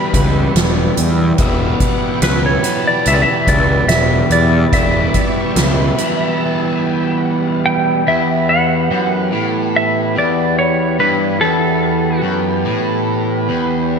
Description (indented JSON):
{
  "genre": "psychedelic rock",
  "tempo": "72 BPM",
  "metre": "4/4",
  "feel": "straight",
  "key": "E dorian",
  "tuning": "A4 = 438 Hz",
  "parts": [
    { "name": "clean lap steel guitar", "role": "melody", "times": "0.0-12.2 s", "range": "A4 to G5", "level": "-17 LUFS", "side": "equal", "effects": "lush chorus, diffuse ambient delay" },
    { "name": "combo organ", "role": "sustained chords", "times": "0.0-14.0 s", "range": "E3 to B4", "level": "-22 LUFS", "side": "right 2 dB", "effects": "none" },
    { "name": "crunchy overdriven guitar", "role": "riff", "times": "0.0-14.0 s", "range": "E2 to E4", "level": "-18 LUFS", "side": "equal", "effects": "flanger" },
    { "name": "fuzz picked electric bass", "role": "bass", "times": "0.1-5.9 s", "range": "E1 to E2", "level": "-16 LUFS", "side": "equal", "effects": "overdrive" },
    { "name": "soft-mallet drum kit", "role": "drums", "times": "0.1-6.2 s", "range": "hi-hat, kick drum, snare drum", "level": "-19 LUFS", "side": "equal", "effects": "none" }
  ],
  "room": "wet plate reverb, RT60 2.8 s",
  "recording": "dreamy mix soaked in reverb",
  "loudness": "-13 LUFS",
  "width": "side -6 dB against mid",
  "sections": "0.0-8.1 A section; 8.1-14.0 B section",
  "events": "none",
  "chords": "0.0 Em"
}